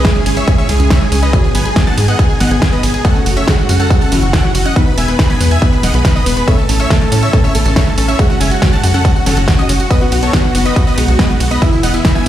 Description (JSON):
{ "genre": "uplifting trance", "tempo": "140 BPM", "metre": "4/4", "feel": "straight", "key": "unclear", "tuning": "A4 = 440 Hz", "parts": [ { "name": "big supersaw lead", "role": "melody", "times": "0.0-12.3 s", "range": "E4 to B5", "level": "-19 LUFS", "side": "equal", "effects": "sidechain pumping, dub echo" }, { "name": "analog pluck", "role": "second line", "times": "0.0-12.3 s", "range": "E4 to B5", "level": "-26 LUFS", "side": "equal", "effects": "none" }, { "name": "felt-muted upright piano", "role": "second line", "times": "0.0-12.3 s", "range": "D#3 to B4", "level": "-22 LUFS", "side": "right 2 dB", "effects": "ping-pong delay" }, { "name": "lush unison pad", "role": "sustained chords", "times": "0.0-12.3 s", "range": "B2 to A4", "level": "-24 LUFS", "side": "equal", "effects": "chorus, sidechain pumping" }, { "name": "big-room dance drum kit", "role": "drums", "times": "0.0-12.3 s", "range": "hi-hat, ride cymbal, snare drum, tambourine", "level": "-20 LUFS", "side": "right 1 dB", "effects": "sidechain pumping on hats, sidechain pumping on cymbals, sidechain pumping on perc" }, { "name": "electronic kick drum", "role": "drums", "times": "0.0-12.1 s", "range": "none", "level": "-13 LUFS", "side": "equal", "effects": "none" }, { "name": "wide unison pluck", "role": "arpeggios", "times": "0.2-12.3 s", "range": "B3 to C#4", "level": "-21 LUFS", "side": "left 2 dB", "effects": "sidechain pumping, dub echo" }, { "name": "tight sequencer bass", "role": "bass", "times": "0.3-12.3 s", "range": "E1 to A2", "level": "-14 LUFS", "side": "equal", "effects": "tube saturation, sidechain pumping" } ], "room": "little or no reverb", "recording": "played on a big sound system in a bare room, large studio reverb", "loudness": "-10 LUFS", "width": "side -12 dB against mid", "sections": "0.0-12.3 A section", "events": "none", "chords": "0.0 C#m; 1.3 G#m; 3.0 F#m7; 4.8 E; 6.5 A; 8.2 F#m; 9.9 B; 11.6 E" }